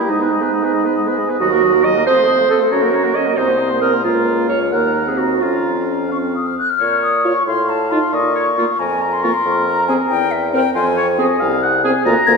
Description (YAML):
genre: quick classical-period movement for wind quintet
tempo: 91 BPM (dotted quarters)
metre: 6/8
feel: rubato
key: Bb minor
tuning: A4 = 440 Hz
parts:
  - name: mellow silver concert flute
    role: melody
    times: 0.0-12.3 s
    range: E5 to Ab6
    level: -21 LUFS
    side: left 4 dB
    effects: none
  - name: warm oboe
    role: second line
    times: 0.0-12.4 s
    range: Bb4 to Bb5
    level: -21 LUFS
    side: left 2 dB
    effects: none
  - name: clear clarinet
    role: accompaniment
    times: 0.0-12.4 s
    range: D#4 to Eb5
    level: -18 LUFS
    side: right 4 dB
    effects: none
  - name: mellow French horn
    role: accompaniment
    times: 0.0-12.4 s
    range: Gb3 to F4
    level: -22 LUFS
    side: left 1 dB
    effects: none
  - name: warm bassoon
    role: bass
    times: 0.0-12.4 s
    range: C2 to Bb2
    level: -21 LUFS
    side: right 1 dB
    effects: none
room: wet concert hall reverb, RT60 1.8 s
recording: none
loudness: -14 LUFS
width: side -4 dB against mid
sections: 0.0-6.8 A section; 6.8-12.4 B section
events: none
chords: 0.1 G#m; 1.4 Ebm; 2.1 F7; 2.7 Gb; 3.4 Cm7b5; 4.0 Bbm/Db; 4.7 Ebm; 5.4 Bbm/F; 6.1 F5; 6.8 Bbm; 7.5 F/A; 8.1 Bbm; 9.5 F5; 10.1 C7/E (rootless); 10.8 Fm